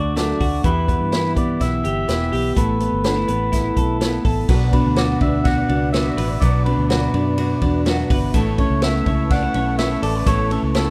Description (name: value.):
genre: jangly indie pop.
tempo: 125 BPM.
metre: 4/4.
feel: straight.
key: unclear.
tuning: A4 = 439 Hz.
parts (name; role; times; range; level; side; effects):
melodica; melody; 0.0-10.9 s; A4 to F#5; -28 LUFS; equal; none.
picked steel-string acoustic guitar; accompaniment; 0.0-10.9 s; B2 to C#5; -31 LUFS; equal; none.
twelve-string electric guitar; arpeggios; 0.0-10.9 s; B2 to B4; -24 LUFS; equal; none.
vintage muted fingered electric bass; bass; 0.0-10.9 s; E1 to G2; -25 LUFS; equal; none.
vintage drum kit; drums; 0.2-10.9 s; crash cymbal, hi-hat, kick drum, ride cymbal, snare drum; -24 LUFS; equal; none.
breathy large flute ensemble; sustained chords; 4.5-10.9 s; B4 to D6; -35 LUFS; equal; none.
room: small room ambience.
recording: rough home demo mix.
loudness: -19 LUFS.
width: mono.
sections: 0.0-4.5 A section; 4.5-10.9 B section.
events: none.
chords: 0.0 D; 0.6 Em; 2.6 Asus2; 4.5 Bm; 8.3 Aadd9.